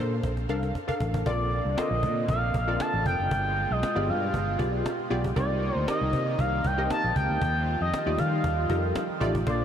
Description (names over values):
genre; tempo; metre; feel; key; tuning
early-eighties boogie funk; 117 BPM; 4/4; straight; Bb major; A4 = 440 Hz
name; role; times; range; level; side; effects
funky polysynth comp; accompaniment; 0.0-9.6 s; A3 to F5; -31 LUFS; left 1 dB; chorus
fingered electric bass; bass; 0.0-9.6 s; F1 to Eb3; -29 LUFS; equal; none
cajon; drums; 0.1-9.6 s; none; -34 LUFS; equal; none
expressive synth lead; melody; 1.3-9.6 s; D5 to A5; -28 LUFS; equal; chorus, ping-pong delay
warm analog pad; sustained chords; 1.3-9.6 s; B2 to F4; -35 LUFS; equal; chorus
room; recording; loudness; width
moderate huge ambient reverb, RT60 7.3 s; dreamy mix soaked in reverb; -24 LUFS; side -9 dB against mid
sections
0.0-1.3 A section; 1.3-9.6 B section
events
drum fill 0.2-1.3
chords
0.0 Bbmaj7; 1.3 Bbmaj9; 3.3 G7b9; 5.4 Cm9; 7.4 Ebmaj9#11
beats
0.24 0.75 | 1.26 1.77 2.29 2.80 | 3.31 3.83 4.34 4.85 | 5.36 5.88 6.39 6.90 | 7.42 7.93 8.44 8.95 | 9.47